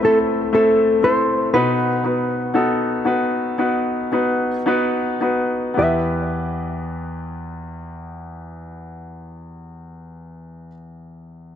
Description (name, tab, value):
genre	pop ballad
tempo	53-62 BPM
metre	4/4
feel	straight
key	E harmonic minor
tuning	A4 = 441 Hz
part	hollow-body jazz guitar	melody	0.0-10.7 s	A4 to E5	-19 LUFS	equal	none
part	clear concert grand piano	accompaniment	0.0-11.6 s	E2 to C5	-20 LUFS	left 1 dB	none
room	moderate plate reverb, RT60 3.4 s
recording	dark, warm production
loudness	-17 LUFS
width	side -9 dB against mid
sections	0.0-5.8 A section; 5.8-10.3 B section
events	slowing down 0.0-5.8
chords	0.0 Am; 1.5 B; 5.8 Em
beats	0.53 | 1.53 2.54 3.58 4.66 | 5.76 6.89 8.02 9.15